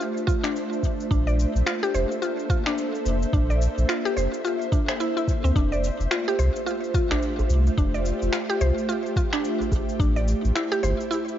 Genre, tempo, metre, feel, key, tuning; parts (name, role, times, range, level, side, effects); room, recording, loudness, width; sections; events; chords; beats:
organic downtempo; 108 BPM; 4/4; swing 60% on 16ths; A4 = 440 Hz
ethereal airy pad; sustained chords; 0.0-11.4 s; A3 to E5; -28 LUFS; equal; ensemble chorus, built-in reverb, sidechain pumping
mallet-like synth pluck; arpeggios; 0.0-11.3 s; C4 to D5; -27 LUFS; equal; chorus, digital delay
electronic shaker and finger snaps; drums; 0.0-11.4 s; -32 LUFS; left 1 dB; overdrive
electronic kick drum; drums; 0.3-10.1 s; -23 LUFS; equal; overdrive
warm sub bass; bass; 1.1-10.9 s; F1 to D2; -22 LUFS; equal; sidechain pumping
djembe; percussion; 5.7-11.0 s; -31 LUFS; equal
light reverb; nothing above 7.5 kHz; -21 LUFS; side -11 dB against mid
0.0-11.4 A section
0.0 Dm9; 1.1 Bbmaj9#11; 5.6 Fmaj9; 10.0 Am7
0.00 0.56 | 1.11 1.67 2.22 2.78 | 3.33 3.89 4.45 5.00 | 5.56 6.11 6.67 7.22 | 7.78 8.33 8.89 9.45 | 10.00 10.56 11.11